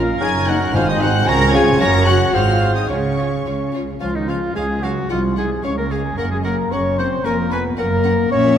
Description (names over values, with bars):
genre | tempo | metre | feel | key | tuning
quick classical-period movement for symphony orchestra | 112 BPM | 2/4 | straight | Db major | A4 = 440 Hz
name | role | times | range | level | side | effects
bright oboe | second line | 0.0-8.6 s | Eb4 to Db5 | -27 LUFS | equal | none
mellow clarinet | second line | 0.0-8.6 s | Db4 to Db5 | -24 LUFS | left 2 dB | none
mellow large flute ensemble | second line | 0.0-8.4 s | Eb5 to Db6 | -28 LUFS | equal | none
rich chamber violin section | second line | 0.0-8.6 s | Eb4 to Ab5 | -32 LUFS | left 3 dB | none
rich studio viola section | accompaniment | 0.0-8.6 s | Db4 to Bb4 | -25 LUFS | equal | none
dark French horn section | sustained chords | 0.0-8.6 s | Eb3 to Gb4 | -25 LUFS | left 5 dB | none
clear trumpet section | stabs | 0.0-3.7 s | Db5 to Bb5 | -22 LUFS | right 1 dB | none
dark chamber double bass section | bass | 0.0-8.6 s | F1 to Db2 | -23 LUFS | right 3 dB | none
rich chamber cello section | bass | 0.0-8.6 s | C2 to Db3 | -23 LUFS | right 1 dB | none
rich chamber violin section | melody | 0.2-8.6 s | F#5 to Bb6 | -27 LUFS | left 2 dB | none
mellow bassoon | accompaniment | 0.2-3.7 s | C4 to Db4 | -25 LUFS | right 1 dB | none
timpani | percussion | 0.7-1.2 s | Ab2 | -24 LUFS | left 1 dB | none
room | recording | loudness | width
wet concert hall reverb, RT60 2.0 s | none | -15 LUFS | side -9 dB against mid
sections
0.0-4.0 A section; 4.0-8.6 B section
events
none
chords
0.2 Ebm/Gb; 0.7 Ab7; 1.3 Db; 1.8 Gb; 2.3 Ab7; 2.9 Db; 5.1 Ab/C; 5.6 Db; 6.2 Gb5; 7.2 Db7/F; 7.8 Gb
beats
0.21 | 0.74 1.27 | 1.80 2.34 | 2.89 3.45 | 4.01 4.55 | 5.10 5.64 | 6.18 6.71 | 7.25 7.78 | 8.31